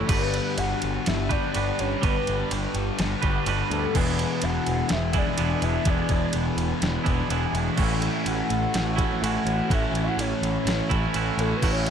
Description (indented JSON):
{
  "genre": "rock, shoegaze and dream pop",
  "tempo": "125 BPM",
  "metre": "4/4",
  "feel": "straight",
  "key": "unclear",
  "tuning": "A4 = 440 Hz",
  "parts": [
    { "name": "soft octave-layered synth lead", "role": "melody", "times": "0.0-11.9 s", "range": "A4 to F#5", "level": "-31 LUFS", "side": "left 2 dB", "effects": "chorus, phaser, tape echo" },
    { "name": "fingerpicked twelve-string acoustic guitar", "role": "arpeggios", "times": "0.0-0.1, 7.8-11.9 s", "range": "E3 to F#4", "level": "-34 LUFS", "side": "right 10 dB", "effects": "analog chorus, tape echo" },
    { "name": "thick fuzz guitar", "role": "riff", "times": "0.0-11.9 s", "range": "E2 to A3", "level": "-30 LUFS", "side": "left 10 dB", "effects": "distortion, lush chorus" },
    { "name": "twangy electric guitar", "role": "riff", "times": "0.0-11.9 s", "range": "E2 to B4", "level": "-30 LUFS", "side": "right 12 dB", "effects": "reverse reverb" },
    { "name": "growling picked electric bass", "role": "bass", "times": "0.0-11.9 s", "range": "E1 to D2", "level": "-28 LUFS", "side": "equal", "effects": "overdrive" },
    { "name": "raw garage guitar", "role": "riff", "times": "0.1-11.9 s", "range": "A2 to G#4", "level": "-32 LUFS", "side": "equal", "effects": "overdrive, phaser" },
    { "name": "detuned 8-bit digital drum machine", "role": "drums", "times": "0.1-11.9 s", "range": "crash cymbal, kick drum, ride cymbal, snare drum", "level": "-29 LUFS", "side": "equal", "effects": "overdrive" }
  ],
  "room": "digital ambience",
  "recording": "dark, warm production",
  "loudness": "-22 LUFS",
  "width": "side -8 dB against mid",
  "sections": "0.1-11.9 A section",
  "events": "none",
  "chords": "0.1 Gmaj7; 3.9 E7; 7.8 A6",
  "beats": "| 0.09 0.57 1.06 1.54 | 2.02 2.50 2.98 3.46 | 3.95 4.43 4.91 5.39 | 5.87 6.35 6.83 7.30 | 7.78 8.26 8.74 9.22 | 9.70 10.18 10.66 11.14 | 11.62"
}